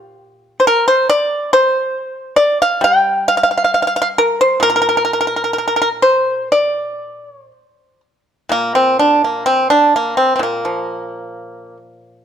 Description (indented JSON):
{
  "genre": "chinese traditional, Chinese solo plucked strings",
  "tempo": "57-72 BPM",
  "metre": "4/4",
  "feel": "rubato",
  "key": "unclear",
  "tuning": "A4 = 440 Hz",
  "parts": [
    { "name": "pipa", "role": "solo", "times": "0.0-12.2 s", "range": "Bb2 to G5", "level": "-13 LUFS", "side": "equal", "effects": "none" }
  ],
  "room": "light reverb",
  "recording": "close, detailed microphones",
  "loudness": "-12 LUFS",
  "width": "side -8 dB against mid",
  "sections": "0.0-8.5 A section; 8.5-12.2 B section",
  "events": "none",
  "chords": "none",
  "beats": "0.21 | 1.10 1.96 2.82 3.73 | 4.63 5.54 6.50 7.52 | 8.51 9.47 10.42 11.35"
}